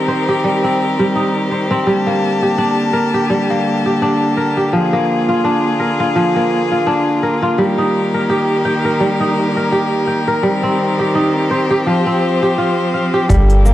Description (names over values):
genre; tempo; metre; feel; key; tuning
folktronica; 84 BPM; 4/4; swing 56% on 16ths; G minor; A4 = 440 Hz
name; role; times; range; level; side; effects
bright string quartet; sustained chords; 0.0-13.7 s; D3 to A5; -18 LUFS; equal; none
kora; arpeggios; 0.0-13.7 s; F3 to G5; -15 LUFS; equal; vintage 12-bit sampler grit, tape echo
round analog bass; bass; 13.3-13.7 s; G1; -10 LUFS; equal; none
electronic hi-hat and cabasa; drums; 13.3-13.7 s; none; -33 LUFS; equal; overdrive, studio reverb
electronic kick drum; drums; 13.3-13.5 s; none; -15 LUFS; equal; overdrive, studio reverb
room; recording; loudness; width
little or no reverb; dry, close 1970s-style studio recording, vinyl crackle; -13 LUFS; side -13 dB against mid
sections
0.0-13.3 A section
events
none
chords
0.0 Cm7; 1.9 Gmadd9; 4.7 Bb7; 7.6 Eb; 10.4 Cm7; 11.9 Fsus2